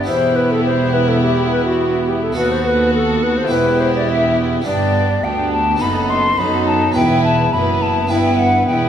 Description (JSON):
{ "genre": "classical, baroque-style concerto movement with solo episodes", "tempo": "104 BPM", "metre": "4/4", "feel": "straight", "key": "E minor from 4.7 s", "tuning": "A4 = 440 Hz", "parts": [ { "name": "hollow concert flute", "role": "melody", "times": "0.0-8.9 s", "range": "F#4 to C6", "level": "-18 LUFS", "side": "left 2 dB", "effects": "none" }, { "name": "rich chamber violin section", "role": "melody", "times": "0.0-8.9 s", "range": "G4 to B4", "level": "-27 LUFS", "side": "left 6 dB", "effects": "none" }, { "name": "rich chamber violin section", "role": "second line", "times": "0.0-8.9 s", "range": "D4 to F#4", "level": "-21 LUFS", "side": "left 1 dB", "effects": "none" }, { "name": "harpsichord", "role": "accompaniment", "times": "0.0-8.9 s", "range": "D2 to B4", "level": "-25 LUFS", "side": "equal", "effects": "none" }, { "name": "rich chamber viola section", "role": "accompaniment", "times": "0.0-8.9 s", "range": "B3", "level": "-23 LUFS", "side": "right 2 dB", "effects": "none" }, { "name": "rich studio cello section", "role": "bass", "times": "0.0-8.9 s", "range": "D2 to F#3", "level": "-23 LUFS", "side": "right 2 dB", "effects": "none" }, { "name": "warm chamber double bass section", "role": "bass", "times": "0.0-8.9 s", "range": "E1 to F#2", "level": "-23 LUFS", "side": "right 4 dB", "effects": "none" } ], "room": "wet recital hall reverb, RT60 1.5 s", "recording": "minimal, uncompressed stereo recording", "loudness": "-14 LUFS", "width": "side -9 dB against mid", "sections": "0.0-8.9 A section", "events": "none", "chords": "0.1 Em; 2.4 B7/D#; 3.5 Em; 4.7 G; 5.8 B7/F#; 7.0 E5; 8.1 Em/G" }